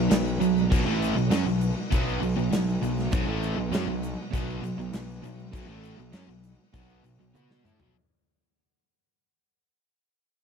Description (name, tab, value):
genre	classic rock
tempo	100 BPM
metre	4/4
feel	straight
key	B major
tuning	A4 = 437 Hz
part	bright tonewheel organ	sustained chords	0.0-7.9 s	B3 to B4	-43 LUFS	left 1 dB	slow rotary speaker, overdrive
part	crunchy overdriven guitar	riff	0.0-7.9 s	A2 to B4	-30 LUFS	right 11 dB	none
part	crunchy overdriven guitar	riff	0.0-7.9 s	A2 to B4	-33 LUFS	equal	none
part	distorted electric guitar	riff	0.0-8.0 s	A2 to B4	-34 LUFS	left 14 dB	overdrive
part	fuzz picked electric bass	bass	0.0-7.9 s	A1 to B2	-30 LUFS	equal	overdrive
part	big rock drum kit	drums	0.1-7.9 s	crash cymbal, kick drum, snare drum, toms	-29 LUFS	equal	none
part	egg shaker	percussion	0.1-7.9 s	none	-50 LUFS	right 24 dB	none
room	little or no reverb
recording	none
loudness	-24 LUFS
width	side -6 dB against mid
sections	0.0-7.9 A section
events	fade-out 0.0-7.9; drum fill 7.3-7.9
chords	0.0 B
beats	0.11 | 0.71 1.31 1.92 2.52 | 3.12 3.73 4.33 4.93 | 5.54 6.14 6.74 7.35